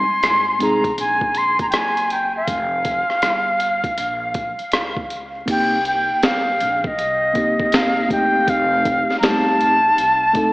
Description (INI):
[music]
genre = hip hop, jazz-hop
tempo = 80 BPM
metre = 4/4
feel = swing 64% on 16ths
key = unclear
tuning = A4 = 440 Hz
[part]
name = reedy silver concert flute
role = melody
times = 0.0-10.5 s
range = Eb5 to C6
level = -17 LUFS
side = equal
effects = tape echo
[part]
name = mellow tine electric piano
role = accompaniment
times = 0.0-0.9, 5.5-10.5 s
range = G3 to A4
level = -22 LUFS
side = equal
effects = medium stereo tremolo
[part]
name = upright bass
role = bass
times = 0.0-10.5 s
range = F1 to Db2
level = -34 LUFS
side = equal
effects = none
[part]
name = boom bap sampler-style drum kit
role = drums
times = 0.2-10.5 s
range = crash cymbal, hi-hat, kick drum, rim click, snare drum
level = -23 LUFS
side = equal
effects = vintage 12-bit sampler grit
[sound]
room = wet lush hall reverb, RT60 2.4 s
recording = dreamy mix soaked in reverb, vinyl crackle, AM radio sound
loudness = -16 LUFS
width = side -21 dB against mid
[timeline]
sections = 0.0-5.5 A section; 5.5-10.5 B section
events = none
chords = 0.0 Fmadd9; 5.5 Cm7; 8.5 F9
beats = 0.23 0.98 1.73 | 2.48 3.23 3.98 4.73 | 5.48 6.23 6.98 7.73 | 8.48 9.23 9.98